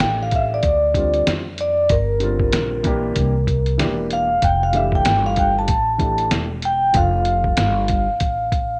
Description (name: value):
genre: hip hop, jazz-hop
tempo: 95 BPM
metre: 4/4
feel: swing 60% on 16ths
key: F major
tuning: A4 = 443 Hz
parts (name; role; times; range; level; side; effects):
- vibraphone with soft mallets; melody; 0.0-8.8 s; Bb4 to A5; -22 LUFS; equal; none
- dark grand piano; accompaniment; 0.0-7.9 s; D3 to G4; -29 LUFS; equal; none
- upright bass; bass; 0.0-8.8 s; E1 to F2; -25 LUFS; equal; none
- lo-fi sampler-style drum kit; drums; 0.0-8.7 s; hi-hat, kick drum, snare drum; -24 LUFS; equal; none
room: moderate plate reverb, RT60 2.3 s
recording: nothing above 10.9 kHz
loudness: -19 LUFS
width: mono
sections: 0.0-8.8 A section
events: none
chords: 0.0 Fmaj9 (rootless); 0.6 Dm7; 1.9 Gm7; 3.2 C9; 4.4 Fmaj9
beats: 0.00 0.63 1.26 | 1.90 2.53 3.16 3.79 | 4.42 5.05 5.69 6.32 | 6.95 7.58 8.21